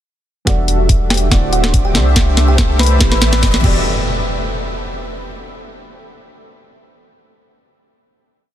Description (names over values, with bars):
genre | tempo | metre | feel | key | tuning
future bass | 142 BPM | 4/4 | half-time | E minor | A4 = 442 Hz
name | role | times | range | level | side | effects
kalimba | melody | 0.5-3.8 s | F#4 to B5 | -24 LUFS | right 1 dB | sidechain pumping, ping-pong delay
soft round pluck | accompaniment | 0.5-3.8 s | C3 to D5 | -27 LUFS | left 1 dB | chorus, sidechain pumping, digital delay
ethereal airy pad | sustained chords | 0.8-3.8 s | C5 to D6 | -31 LUFS | equal | ensemble chorus, built-in reverb, tremolo, sidechain pumping
soft supersaw | riff | 0.5-3.8 s | G3 to E5 | -22 LUFS | equal | lush chorus, sidechain pumping, low-pass filter
long sustained 808-style bass | bass | 0.5-3.8 s | D1 to C2 | -15 LUFS | equal | sidechain pumping
electronic kick drum | drums | 0.5-3.7 s | none | -15 LUFS | equal | none
trap drum kit | drums | 0.5-3.7 s | crash cymbal, hi-hat, snare drum | -18 LUFS | equal | none
riser and impact | sound effects | 1.8-5.3 s | none | -25 LUFS | equal | none
room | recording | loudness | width
light reverb | dense, heavily limited modern master | -12 LUFS | side -11 dB against mid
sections
0.5-3.9 build; 3.9-5.5 final hit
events
build-up 0.5-3.9; drum fill 0.5-3.9; filter sweep on supersaw synth 0.5-3.9; riser 1.8-3.9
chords
0.5 Em11; 1.3 D9; 1.9 C69; 3.0 Am9; 3.6 Em11; 3.9 N.C.